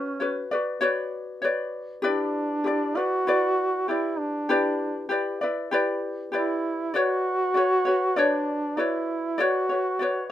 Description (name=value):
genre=pop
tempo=98 BPM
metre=4/4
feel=straight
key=B minor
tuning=A4 = 444 Hz
part: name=mellow duduk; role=melody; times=0.0-10.3 s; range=C#4 to F#4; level=-25 LUFS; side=right 1 dB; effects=none
part: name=ukulele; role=accompaniment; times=0.0-10.3 s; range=E4 to D5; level=-26 LUFS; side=left 2 dB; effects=none
room=light reverb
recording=minimal, uncompressed stereo recording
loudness=-23 LUFS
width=side -12 dB against mid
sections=0.0-10.3 A section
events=none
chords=0.0 Bmadd9; 2.0 Em7; 6.9 Bmadd9